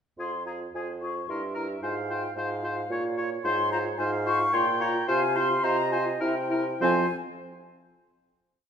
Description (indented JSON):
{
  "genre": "quick classical-period movement for wind quintet",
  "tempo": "98-113 BPM",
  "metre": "3/4",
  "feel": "rubato",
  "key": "F minor",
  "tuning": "A4 = 440 Hz",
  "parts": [
    { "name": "mellow concert flute", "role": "melody", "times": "0.2-7.2 s", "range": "F5 to Db6", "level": "-30 LUFS", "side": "left 4 dB", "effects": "none" },
    { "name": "clear oboe", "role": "second line", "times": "0.2-7.1 s", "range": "Ab4 to Db5", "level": "-32 LUFS", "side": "left 2 dB", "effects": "none" },
    { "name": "warm French horn", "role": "accompaniment", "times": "0.2-7.1 s", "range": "F3 to F4", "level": "-34 LUFS", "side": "left 1 dB", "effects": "none" },
    { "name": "mellow bassoon", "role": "bass", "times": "0.2-7.1 s", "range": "F2 to C3", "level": "-31 LUFS", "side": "right 3 dB", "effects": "none" },
    { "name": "warm clarinet", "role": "accompaniment", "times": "0.7-7.1 s", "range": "C4 to G5", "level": "-34 LUFS", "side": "right 7 dB", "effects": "none" }
  ],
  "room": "wet recital hall reverb, RT60 1.6 s",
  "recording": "recorded in a church or concert hall",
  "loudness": "-25 LUFS",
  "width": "side -7 dB against mid",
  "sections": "0.2-6.8 A section; 6.8-8.6 final chord",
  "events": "slowing down 2.6-6.8",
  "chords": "0.2 Fm; 1.3 C7/G; 1.8 Fm/Ab; 2.9 Bbm; 3.4 Fm/Ab; 4.5 Gm7b5/Bb; 5.1 F5/C; 6.2 C7; 6.8 F5",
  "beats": "| 0.19 0.74 1.29 | 1.83 2.36 2.90 | 3.44 3.99 4.54 | 5.09 5.64 6.22 | 6.82"
}